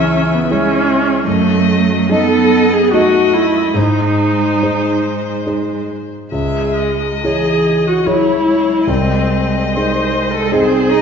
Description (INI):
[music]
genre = classical, slow romantic movement for piano quartet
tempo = 71 BPM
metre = 3/4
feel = uneven beats, rubato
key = C# minor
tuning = A4 = 440 Hz
[part]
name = rich violin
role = melody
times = 0.0-11.0 s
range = B#4 to E5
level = -22 LUFS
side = left 6 dB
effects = none
[part]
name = rich cello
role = second line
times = 0.0-11.0 s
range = E3 to D#4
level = -18 LUFS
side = right 3 dB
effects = none
[part]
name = dark concert grand piano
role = accompaniment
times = 0.0-11.0 s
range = B#1 to D#5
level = -18 LUFS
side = left 1 dB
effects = none
[part]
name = warm viola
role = accompaniment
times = 0.0-11.0 s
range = G#3 to B#4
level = -15 LUFS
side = right 1 dB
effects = none
[sound]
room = wet recital hall reverb, RT60 1.3 s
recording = heard from further back in the room, nothing above 7.5 kHz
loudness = -12 LUFS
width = side -6 dB against mid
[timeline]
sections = 0.0-11.0 A section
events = none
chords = 0.0 C#m; 1.3 D#dim/F#; 3.7 G#; 6.3 C#m; 8.9 G#/B#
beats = 0.51 | 1.26 2.10 2.92 | 3.75 4.62 5.47 | 6.33 7.25 8.07 | 8.88 9.76 10.53